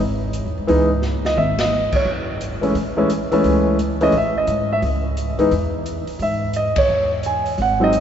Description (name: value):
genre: jazz piano trio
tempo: 174 BPM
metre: 4/4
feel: swing 64% on 8ths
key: C# minor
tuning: A4 = 440 Hz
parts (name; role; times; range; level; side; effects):
- upright bass; bass; 0.0-8.0 s; F#1 to G#2; -24 LUFS; equal; none
- open jazz drum kit; drums; 0.3-8.0 s; crash cymbal, hi-hat, kick drum, ride cymbal, snare drum, toms; -28 LUFS; left 1 dB; none
- warm concert grand piano; melody; 0.7-8.0 s; E3 to G#5; -18 LUFS; equal; none
room: wet cathedral reverb, RT60 6.6 s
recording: recorded in a church or concert hall, nothing above 7.7 kHz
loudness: -17 LUFS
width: side -9 dB against mid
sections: 0.0-8.0 A section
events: drum fill 1.0-1.7; band accent 1.5, 6.7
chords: 0.0 C#m; 2.1 F#m9; 4.8 C#m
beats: 0.34 | 0.68 1.03 1.37 1.72 | 2.06 2.41 2.75 3.10 | 3.44 3.79 4.13 4.48 | 4.82 5.17 5.51 5.86 | 6.21 6.55 6.90 7.24 | 7.59 7.93